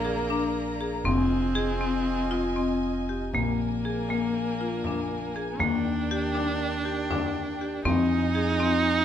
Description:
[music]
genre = contemporary instrumental, chamber music in an uneven meter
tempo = 239 BPM (eighths)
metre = 9/8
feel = straight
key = unclear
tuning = A4 = 440 Hz
[part]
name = rich viola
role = second line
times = 0.0-9.0 s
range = Bb3 to Eb4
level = -30 LUFS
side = right 4 dB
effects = none
[part]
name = dark chamber string section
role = sustained chords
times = 0.0-9.0 s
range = Eb3 to Bb5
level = -34 LUFS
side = right 1 dB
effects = none
[part]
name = marimba with hard mallets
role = arpeggios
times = 0.0-9.0 s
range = Bb3 to Ab4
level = -27 LUFS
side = left 4 dB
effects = none
[part]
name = upright bass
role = bass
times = 0.0-9.0 s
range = F1 to F2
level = -32 LUFS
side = right 3 dB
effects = none
[part]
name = frame drum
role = percussion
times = 0.1-8.8 s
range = none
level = -36 LUFS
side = left 2 dB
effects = none
[sound]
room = moderate recital hall reverb, RT60 1.4 s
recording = close, detailed microphones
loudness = -24 LUFS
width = side -10 dB against mid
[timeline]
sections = 0.0-3.3 A section; 3.3-9.0 B section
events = none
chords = 0.0 Bb7; 1.1 Fm7; 3.3 Bb7; 5.6 Ebmaj7; 7.9 Fm7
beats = 0.05 0.30 0.55 0.80 | 1.05 1.30 1.56 1.81 2.06 2.32 2.57 2.83 3.09 | 3.35 3.60 3.85 4.10 4.35 4.61 4.86 5.11 5.36 | 5.61 5.86 6.11 6.36 6.61 6.86 7.11 7.36 7.61 | 7.86 8.11 8.35 8.60 8.85

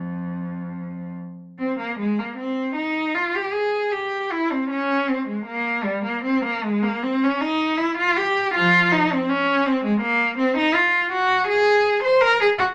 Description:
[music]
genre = classical, baroque-style suite movement for unaccompanied cello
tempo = 78 BPM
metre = 3/4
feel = uneven beats, rubato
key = F minor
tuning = A4 = 442 Hz
[part]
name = warm cello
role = solo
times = 0.0-12.7 s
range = F2 to C5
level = -21 LUFS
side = equal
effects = none
[sound]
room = moderate large studio reverb, RT60 0.9 s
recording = none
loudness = -21 LUFS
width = mono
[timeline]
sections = 0.0-1.6 A section; 1.6-12.7 B section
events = none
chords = none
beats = 0.76 | 1.59 2.38 3.16 | 3.93 4.70 5.47 | 6.26 7.04 7.81 | 8.56 9.31 10.04 | 10.78 11.51 12.24

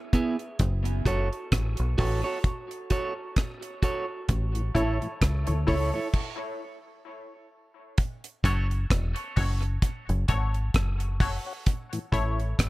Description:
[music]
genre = dub reggae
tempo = 65 BPM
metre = 4/4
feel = swing 56% on 16ths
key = F# minor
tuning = A4 = 440 Hz
[part]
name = electric guitar at the edge of break-up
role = accompaniment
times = 0.1-8.7 s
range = B3 to C#5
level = -32 LUFS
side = right 3 dB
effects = high-pass filter, tape echo
[part]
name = deep reggae drum kit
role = drums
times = 0.1-12.7 s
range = crash cymbal, hi-hat, kick drum, rim click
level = -26 LUFS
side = equal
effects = none
[part]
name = deep dub fingered electric bass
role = bass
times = 0.6-12.7 s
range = E1 to D2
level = -27 LUFS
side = equal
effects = none
[part]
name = mellow tonewheel organ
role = accompaniment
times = 4.6-12.0 s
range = F#2 to F#4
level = -37 LUFS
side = left 2 dB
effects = slow rotary speaker, high-pass filter
[part]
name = filtered dub chord stab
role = stabs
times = 4.7-12.4 s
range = E4 to C#5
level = -35 LUFS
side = left 3 dB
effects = chorus, high-pass filter, tape echo
[sound]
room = light reverb, small room ambience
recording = none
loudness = -25 LUFS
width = side -19 dB against mid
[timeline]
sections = 0.0-8.0 A section; 8.0-12.7 B section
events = break 0.0-4.3; filter sweep 4.3-11.7; stop 6.1-8.0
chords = 0.0 E; 0.6 F#m; 4.3 A; 6.1 N.C.; 8.0 F#m; 11.7 A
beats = | 0.60 1.52 2.44 3.37 | 4.29 5.21 6.13 7.06 | 7.98 8.90 9.82 10.74 | 11.66 12.59

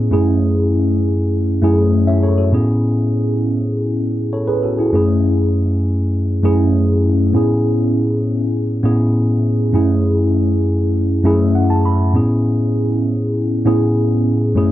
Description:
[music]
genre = soul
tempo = 100 BPM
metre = 4/4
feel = straight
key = A major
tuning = A4 = 440 Hz
[part]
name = mellow tine electric piano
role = solo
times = 0.0-14.7 s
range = F#2 to B5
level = -14 LUFS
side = equal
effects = phaser
[sound]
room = light reverb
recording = dry, close 1970s-style studio recording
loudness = -14 LUFS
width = side -13 dB against mid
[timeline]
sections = 0.0-14.7 A section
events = tine electric piano fill 11.0-12.2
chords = 0.1 F#m7; 2.5 Amaj7; 4.9 F#m7; 7.3 Amaj7; 9.7 F#m7; 12.2 Amaj7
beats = | 0.12 0.72 1.32 1.92 | 2.52 3.12 3.73 4.33 | 4.93 5.53 6.14 6.74 | 7.34 7.94 8.54 9.15 | 9.75 10.35 10.95 11.55 | 12.16 12.76 13.36 13.96 | 14.57

